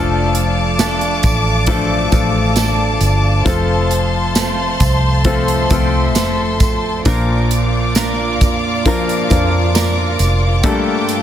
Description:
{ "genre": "pop ballad", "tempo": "67 BPM", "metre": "4/4", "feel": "straight", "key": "F major", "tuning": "A4 = 438 Hz", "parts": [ { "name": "warm upright piano", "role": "accompaniment", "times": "0.0-11.2 s", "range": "G2 to Bb4", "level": "-20 LUFS", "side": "left 5 dB", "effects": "none" }, { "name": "warm studio string section", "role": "sustained chords", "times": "0.0-11.2 s", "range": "F4 to D6", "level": "-20 LUFS", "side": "left 2 dB", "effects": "none" }, { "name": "direct-recorded clean electric guitar", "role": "arpeggios", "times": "0.0-11.2 s", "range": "F2 to Bb4", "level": "-22 LUFS", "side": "right 8 dB", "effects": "lush chorus, digital delay" }, { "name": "vintage muted fingered electric bass", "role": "bass", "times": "0.0-10.6 s", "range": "F1 to F2", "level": "-18 LUFS", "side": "equal", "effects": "none" }, { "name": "modern studio drum kit", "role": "drums", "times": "0.3-11.2 s", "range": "hi-hat, kick drum, snare drum", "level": "-18 LUFS", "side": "right 1 dB", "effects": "none" }, { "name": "tambourine", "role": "percussion", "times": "0.8-10.4 s", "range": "none", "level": "-28 LUFS", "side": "right 7 dB", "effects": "none" } ], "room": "light reverb, small room reverb", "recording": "dense, heavily limited modern master", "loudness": "-13 LUFS", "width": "side -10 dB against mid", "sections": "0.0-11.2 A section", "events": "none", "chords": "0.0 Dm/F; 3.5 F; 7.1 Bb; 10.6 Gmadd9" }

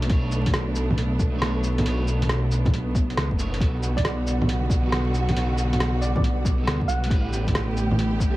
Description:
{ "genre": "future garage", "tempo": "137 BPM", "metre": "4/4", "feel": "swing 67% on 16ths", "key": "B minor", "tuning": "A4 = 440 Hz", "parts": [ { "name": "electric guitar at the edge of break-up", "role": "accompaniment", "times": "0.0-8.4 s", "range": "B2 to D5", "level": "-29 LUFS", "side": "right 2 dB", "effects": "sidechain pumping, analog delay" }, { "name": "warm symphonic string section", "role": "sustained chords", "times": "0.0-8.4 s", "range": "D3 to G4", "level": "-30 LUFS", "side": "right 1 dB", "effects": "sidechain pumping" }, { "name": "dark detuned saw bass", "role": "bass", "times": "0.0-8.4 s", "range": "F#1 to D2", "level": "-25 LUFS", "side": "equal", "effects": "sidechain pumping" }, { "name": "lo-fi sampler-style drum kit", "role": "drums", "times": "0.0-8.3 s", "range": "bongos, cabasa, hi-hat, rim click", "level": "-27 LUFS", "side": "equal", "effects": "dub echo" }, { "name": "electronic kick drum", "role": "drums", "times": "0.1-8.3 s", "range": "none", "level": "-24 LUFS", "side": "equal", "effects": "none" }, { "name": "soft struck synth lead", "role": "melody", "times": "4.0-7.2 s", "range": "D5 to F#5", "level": "-34 LUFS", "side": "right 2 dB", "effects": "chorus, phaser, dub echo" } ], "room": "light reverb", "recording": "echo-heavy mix, vinyl crackle", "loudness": "-21 LUFS", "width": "side -17 dB against mid", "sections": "0.0-8.4 A section", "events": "none", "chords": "0.0 Bm9; 3.6 Gmaj7/B; 7.1 A9sus4" }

